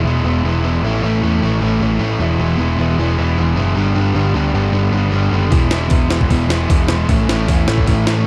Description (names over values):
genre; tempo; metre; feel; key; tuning
punk rock; 154 BPM; 4/4; straight; unclear; A4 = 441 Hz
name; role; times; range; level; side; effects
crunchy overdriven guitar; riff; 0.0-8.3 s; E2 to A3; -22 LUFS; equal; none
distorted electric guitar; riff; 0.0-8.3 s; G2 to E4; -22 LUFS; equal; distortion, slapback echo
overdriven picked electric bass; bass; 0.0-8.2 s; E1 to E2; -20 LUFS; equal; none
jungle sampler-style drum kit; drums; 5.5-8.2 s; hi-hat, kick drum, snare drum; -19 LUFS; equal; none
room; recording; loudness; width
moderate lush hall reverb, RT60 1.7 s; big arena sound; -16 LUFS; mono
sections
0.0-8.3 A section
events
none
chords
0.0 E; 0.8 A; 2.2 E; 3.8 G; 5.5 E; 7.1 A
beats
0.06 0.45 | 0.84 1.23 1.62 2.01 | 2.40 2.79 3.18 3.57 | 3.96 4.35 4.74 5.13 | 5.52 5.91 6.30 6.69 | 7.08 7.48 7.87 8.26